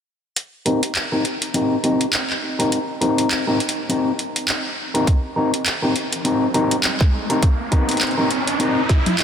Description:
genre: glitch hop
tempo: 102 BPM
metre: 4/4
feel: swing 58% on 16ths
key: C minor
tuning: A4 = 441 Hz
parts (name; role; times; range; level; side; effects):
- drum and bass drum kit; drums; 0.4-9.2 s; handclaps, hi-hat, snare drum, toms; -23 LUFS; equal; none
- semi-hollow electric guitar; stabs; 0.7-8.8 s; C4 to Bb4; -20 LUFS; left 1 dB; vintage 12-bit sampler grit, sidechain pumping, low-pass filter, digital delay
- electronic kick drum; drums; 5.1-9.0 s; none; -16 LUFS; equal; none
- riser; sound effects; 6.1-9.2 s; none; -26 LUFS; right 2 dB; none
room: moderate lush hall reverb, RT60 3.0 s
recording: dense, heavily limited modern master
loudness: -17 LUFS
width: side -8 dB against mid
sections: 0.4-9.2 A section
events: riser 6.1-9.2; drum fill 8.9-9.2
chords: 0.4 Cm7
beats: | 0.37 0.95 1.54 2.13 | 2.72 3.31 3.90 4.48 | 5.07 5.66 6.25 6.84 | 7.43 8.01 8.60 9.19

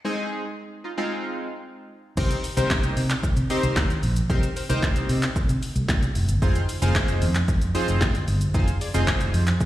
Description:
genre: dance-pop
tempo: 113 BPM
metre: 4/4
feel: straight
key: C minor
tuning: A4 = 440 Hz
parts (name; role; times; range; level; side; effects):
- chorused retro synth keys; accompaniment; 0.0-9.4 s; Ab3 to D5; -28 LUFS; equal; sidechain pumping, slapback echo
- vintage muted fingered electric bass; bass; 2.2-9.5 s; F1 to C3; -23 LUFS; equal; sidechain pumping
- punchy analog drum machine; drums; 2.2-9.7 s; crash cymbal, handclaps, hi-hat, kick drum, shaker, snare drum; -24 LUFS; equal; overdrive
room: light reverb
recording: live gig heard through the venue's PA, recital hall reverb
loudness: -21 LUFS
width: side -14 dB against mid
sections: 0.0-2.2 A section; 2.2-9.7 B section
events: break 0.0-2.2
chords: 0.0 Fm7; 2.2 Cm7; 6.4 Fm7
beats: | 0.05 0.58 1.11 1.64 | 2.17 2.70 3.23 3.77 | 4.30 4.83 5.36 5.89 | 6.42 6.95 7.48 8.01 | 8.54 9.08 9.61

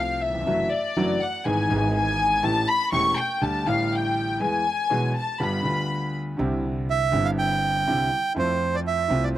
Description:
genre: tango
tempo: 122 BPM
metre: 4/4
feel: rubato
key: unclear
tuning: A4 = 441 Hz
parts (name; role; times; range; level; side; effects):
- warm studio violin section; second line; 0.0-6.2 s; D5 to C#6; -24 LUFS; left 3 dB; none
- warm concert grand piano; accompaniment; 0.0-9.4 s; E1 to A4; -26 LUFS; equal; none
- upright bass; bass; 0.0-9.4 s; E1 to F2; -31 LUFS; right 2 dB; none
- bandoneon; melody; 6.9-9.4 s; C5 to G5; -23 LUFS; right 5 dB; none
room: little or no reverb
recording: recorded outdoors, with no room sound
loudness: -21 LUFS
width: side -13 dB against mid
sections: 0.0-6.4 A section; 6.4-9.4 B section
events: violin section solo 0.0-6.4; break 4.4-6.4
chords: 0.5 Dadd9/F#; 1.4 E/G#; 2.4 A7; 3.4 Dsus4; 4.4 E; 5.4 G7; 6.4 Cadd9; 8.4 Fmaj7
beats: | 0.46 0.96 1.45 1.94 | 2.43 2.92 3.42 3.91 | 4.40 4.90 5.39 5.89 | 6.39 6.88 7.38 7.87 | 8.37 8.86 9.35

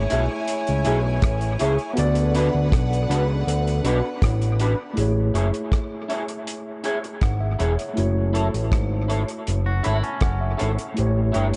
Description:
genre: lovers rock reggae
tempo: 80 BPM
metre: 4/4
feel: straight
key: A major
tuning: A4 = 440 Hz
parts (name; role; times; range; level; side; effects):
- warm studio violin section; second line; 0.0-4.9 s; D4 to G#5; -31 LUFS; equal; none
- tine electric piano; accompaniment; 0.0-11.6 s; A3 to B5; -31 LUFS; equal; overdrive
- fat analog bass; bass; 0.0-11.5 s; E1 to D2; -24 LUFS; equal; none
- electric guitar through a small old amp; stabs; 0.1-11.5 s; D4 to C#5; -30 LUFS; equal; ensemble chorus, dub echo
- cloth-damped thuddy drum kit; drums; 0.1-11.6 s; hi-hat, kick drum, rim click; -27 LUFS; equal; dub echo
- twangy electric guitar; arpeggios; 9.7-10.9 s; C#4 to F#4; -35 LUFS; equal; dub echo
room: small room ambience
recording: dark, warm production, nothing above 10.6 kHz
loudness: -22 LUFS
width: mono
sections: 0.0-5.0 A section; 5.0-11.6 B section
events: tine electric piano fill 9.5-11.0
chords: 0.0 Amaj7; 2.0 D6; 5.0 Amaj7; 8.0 F#m7; 11.0 A7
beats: 0.48 1.23 | 1.97 2.72 3.47 4.22 | 4.97 5.72 6.47 7.22 | 7.97 8.71 9.46 10.21 | 10.96

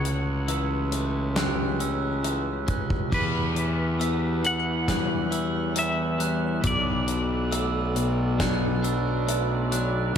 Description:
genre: post-rock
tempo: 68 BPM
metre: 4/4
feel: straight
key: unclear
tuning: A4 = 438 Hz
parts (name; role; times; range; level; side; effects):
- clean electric guitar; melody; 0.0-9.2 s; B4 to F#5; -30 LUFS; left 1 dB; tremolo, slapback echo
- evolving wavetable pad; sustained chords; 0.0-10.2 s; C#3 to D5; -34 LUFS; equal; chorus, built-in reverb
- clean electric guitar; arpeggios; 0.0-10.2 s; B2 to G4; -32 LUFS; left 4 dB; slapback echo
- glockenspiel with brass mallets; arpeggios; 0.0-10.2 s; C#6 to F#6; -34 LUFS; right 8 dB; slapback echo
- fuzz fingered electric bass; bass; 0.0-10.1 s; B1 to E2; -27 LUFS; equal; overdrive
- big rock drum kit; drums; 0.1-10.2 s; crash cymbal, hi-hat, kick drum, snare drum; -30 LUFS; equal; none
room: light reverb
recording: none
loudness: -23 LUFS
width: side -8 dB against mid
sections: 0.0-3.1 A section; 3.1-10.2 B section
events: none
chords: 0.0 A7/C#; 3.1 Em; 6.6 Bm7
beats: 0.48 1.36 2.24 | 3.12 4.00 4.88 5.76 | 6.64 7.52 8.40 9.27 | 10.15

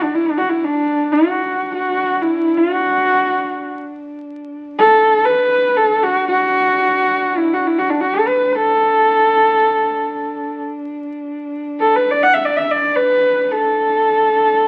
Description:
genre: mongolian traditional, Mongolian folk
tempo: free time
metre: none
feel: none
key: D gong mode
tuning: A4 = 440 Hz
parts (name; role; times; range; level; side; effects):
- dark horsehead fiddle; melody; 0.0-14.7 s; D4 to F#5; -16 LUFS; equal; none
- dark horsehead fiddle; drone; 0.0-14.7 s; D4; -31 LUFS; equal; none
room: moderate studio reverb, RT60 0.9 s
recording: very old 78 rpm record, vinyl crackle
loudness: -16 LUFS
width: mono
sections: 0.0-14.7 A section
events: none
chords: none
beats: free time

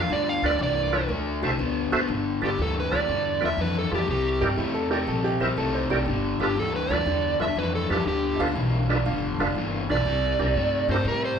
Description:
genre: electric blues shuffle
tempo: 120 BPM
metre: 4/4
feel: swing 68% on 8ths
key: G mixolydian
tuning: A4 = 440 Hz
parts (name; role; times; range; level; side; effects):
- overdriven slide guitar; melody; 0.0-11.4 s; G4 to F5; -27 LUFS; right 3 dB; tape echo
- overdriven semi-hollow guitar; riff; 0.0-11.4 s; G2 to B3; -28 LUFS; left 4 dB; none
- upright bass; bass; 0.0-11.4 s; F1 to A2; -29 LUFS; equal; none
- tonewheel organ; accompaniment; 0.4-11.0 s; D4 to E5; -29 LUFS; right 3 dB; slow rotary speaker, overdrive, chorus vibrato
- bright upright piano; second line; 4.4-9.8 s; D4 to F5; -30 LUFS; right 3 dB; none
room: moderate large studio reverb, RT60 1.2 s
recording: band playing live in one room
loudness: -22 LUFS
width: side -7 dB against mid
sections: 0.0-2.1 A section; 2.1-11.4 B section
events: electric slide guitar solo 0.0-2.1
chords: 0.0 G7; 1.1 D7; 2.1 G7; 4.1 C7; 6.1 G7; 10.1 C7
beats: | 0.10 0.59 1.09 1.59 | 2.09 2.58 3.08 3.58 | 4.08 4.58 5.07 5.57 | 6.07 6.57 7.07 7.56 | 8.06 8.56 9.06 9.55 | 10.05 10.55 11.05

